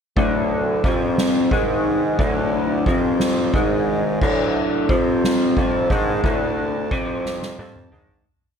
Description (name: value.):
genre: psychedelic rock.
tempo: 59 BPM (dotted quarters).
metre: 6/8.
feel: straight.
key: unclear.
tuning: A4 = 440 Hz.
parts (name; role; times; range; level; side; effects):
combo organ; sustained chords; 0.2-8.3 s; D#3 to A5; -30 LUFS; right 5 dB; spring reverb.
electric guitar through a small old amp; riff; 0.2-8.2 s; D2 to G#3; -20 LUFS; left 1 dB; flanger.
clear bassoon; bass; 0.2-8.2 s; D2 to G#2; -26 LUFS; equal; none.
soft-mallet drum kit; drums; 0.2-8.2 s; crash cymbal, kick drum, ride cymbal, snare drum, toms; -24 LUFS; equal; none.
room: light reverb.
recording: none.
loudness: -17 LUFS.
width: side -7 dB against mid.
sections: 0.2-8.3 riff.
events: fade-out 6.2-8.3; drum fill 7.2-8.3.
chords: 0.2 D; 0.8 F5; 1.5 G#5; 2.2 D; 2.9 F5; 3.5 G#5; 4.2 D; 4.9 F5; 5.6 D5; 6.9 F5; 7.6 D5.